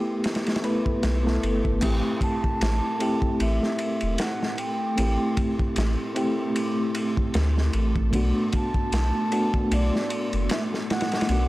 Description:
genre	trip hop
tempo	76 BPM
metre	4/4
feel	swing 57% on 16ths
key	A dorian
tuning	A4 = 440 Hz
part	reed electric piano	accompaniment	0.0-11.5 s	A3 to B4	-27 LUFS	equal	harmonic tremolo, vintage 12-bit sampler grit, tape echo
part	crunchy breakbeat drum kit	drums	0.2-11.5 s	crash cymbal, kick drum, ride cymbal, snare drum	-28 LUFS	equal	none
part	swell	sound effects	0.9-1.8 s	none	-37 LUFS	left 1 dB	none
part	soft dub sub bass	bass	1.0-11.5 s	E1 to D2	-24 LUFS	equal	transformer saturation
part	string machine, cellos	sustained chords	1.8-11.5 s	A3 to A4	-32 LUFS	equal	ensemble chorus
part	baroque flute	melody	2.2-11.5 s	D5 to A5	-31 LUFS	right 1 dB	tape echo
room	small room ambience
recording	dry, gritty hardware recording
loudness	-22 LUFS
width	side -18 dB against mid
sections	0.0-1.8 A section; 1.8-11.5 B section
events	swell 0.9-1.8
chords	0.0 G69; 1.8 Am7; 8.1 Bm7

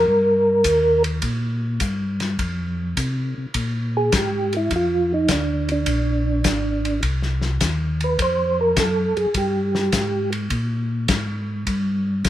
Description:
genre	soul jazz organ trio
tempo	104 BPM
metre	4/4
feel	swing 69% on 8ths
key	Bb mixolydian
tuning	A4 = 440 Hz
part	percussive tonewheel organ	melody	0.0-10.3 s	D4 to C5	-19 LUFS	right 1 dB	slow rotary speaker, chorus vibrato
part	mellow tonewheel organ	bass	0.0-12.3 s	Ab1 to C3	-23 LUFS	left 1 dB	chorus vibrato, slow rotary speaker
part	warm soul drum kit	drums	0.6-12.3 s	hi-hat, kick drum, ride cymbal, snare drum	-25 LUFS	left 2 dB	none
room	light reverb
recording	minimal, uncompressed stereo recording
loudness	-19 LUFS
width	side -12 dB against mid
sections	0.0-3.6 A section; 3.6-12.3 B section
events	tonewheel organ solo 3.6-12.3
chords	0.0 Eb; 1.2 Gm; 2.4 F5; 3.6 Bb13

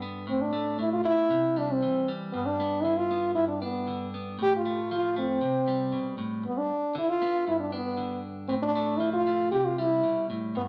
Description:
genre	highlife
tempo	117 BPM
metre	4/4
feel	straight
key	G mixolydian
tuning	A4 = 440 Hz
part	clear French horn	melody	0.0-10.6 s	B3 to G4	-28 LUFS	equal	none
part	clean electric guitar	accompaniment	0.0-10.7 s	G2 to D4	-36 LUFS	equal	none
room	wet large studio reverb, RT60 1.1 s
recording	none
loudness	-28 LUFS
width	mono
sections	0.0-10.7 A section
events	none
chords	0.3 Asus4; 1.3 C; 2.3 G; 4.4 F/A; 5.4 C5; 6.4 G; 8.5 F/A; 9.5 C

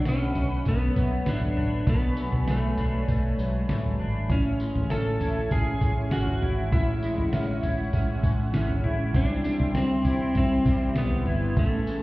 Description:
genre	dream pop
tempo	99 BPM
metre	4/4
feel	straight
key	A major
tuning	A4 = 444 Hz
part	clean lap steel guitar	melody	0.0-12.0 s	A3 to A4	-28 LUFS	equal	tape echo
part	phased analog pad	sustained chords	0.0-12.0 s	G4 to C#6	-37 LUFS	equal	phaser, chorus
part	clean electric guitar	arpeggios	0.0-12.0 s	B2 to E4	-35 LUFS	left 2 dB	analog chorus, tape echo
part	vintage muted fingered electric bass	bass	0.0-11.8 s	G1 to C2	-28 LUFS	equal	none
part	lo-fi sampler-style drum kit	drums	0.1-12.0 s	kick drum, snare drum, tambourine, toms	-28 LUFS	equal	none
part	electric guitar at the edge of break-up	accompaniment	4.3-12.0 s	A2 to E4	-32 LUFS	right 2 dB	tremolo, lush chorus
room	moderate concert hall reverb, RT60 2.4 s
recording	heard muffled through a wall, stone room reverb, EQ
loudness	-23 LUFS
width	side -19 dB against mid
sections	0.0-12.0 A section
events	none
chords	0.0 Bm7; 4.3 Amaj7; 9.1 Cmaj7

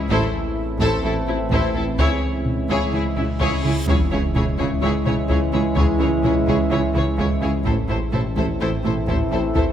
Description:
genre	cinematic, hybrid orchestral and electronic film score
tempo	127 BPM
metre	4/4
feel	straight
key	C# harmonic minor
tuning	A4 = 440 Hz
part	clear trombone section	sustained chords	0.0-9.7 s	E3 to A3	-29 LUFS	right 4 dB	none
part	deep dark ambient pad	sustained chords	0.0-9.7 s	G#3 to E5	-27 LUFS	left 1 dB	chorus, built-in reverb
part	mellow French horn section	sustained chords	0.0-9.7 s	C4 to E4	-28 LUFS	left 3 dB	none
part	sub bass with octave	bass	0.0-9.7 s	A1 to C#2	-27 LUFS	equal	none
part	rich symphonic violin section	melody	0.1-9.6 s	E4 to C#5	-29 LUFS	left 4 dB	none
part	clear studio violin section	second line	0.1-9.6 s	C4 to A4	-30 LUFS	left 2 dB	none
part	rich symphonic viola section	accompaniment	0.1-9.6 s	E4	-30 LUFS	equal	none
part	mellow tuba	bass	0.1-9.7 s	A1 to C#2	-29 LUFS	right 4 dB	none
part	rich symphonic cello section	bass	0.1-9.6 s	A2 to C#3	-29 LUFS	right 3 dB	none
part	rich symphonic double bass section	bass	0.1-9.6 s	A1 to C#2	-28 LUFS	right 3 dB	none
part	taiko ensemble	drums	0.1-9.7 s	none	-25 LUFS	equal	none
part	reverse cymbal and impact	sound effects	3.5-5.8 s	none	-31 LUFS	equal	none
room	moderate scoring stage reverb, RT60 1.9 s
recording	none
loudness	-18 LUFS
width	side -10 dB against mid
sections	0.0-3.9 A section; 3.9-9.7 B section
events	reverse cymbal 3.5-3.9; impact 3.9-5.8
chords	0.1 Am; 2.0 C#m; 7.7 Am

